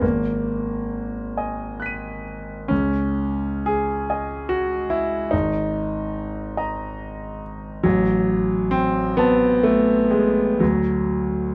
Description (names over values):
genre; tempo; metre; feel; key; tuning
classical, impressionist solo piano; 40-49 BPM (dotted quarters); 6/8; rubato; unclear; A4 = 440 Hz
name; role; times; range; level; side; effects
clear concert grand piano; solo; 0.0-11.5 s; G#1 to D#7; -22 LUFS; equal; none
room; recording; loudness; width
light reverb; close, detailed microphones; -22 LUFS; mono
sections
0.0-11.5 A section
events
none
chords
0.0 G#m9; 2.7 C#sus2; 5.3 G#sus2; 7.8 Am6; 10.6 D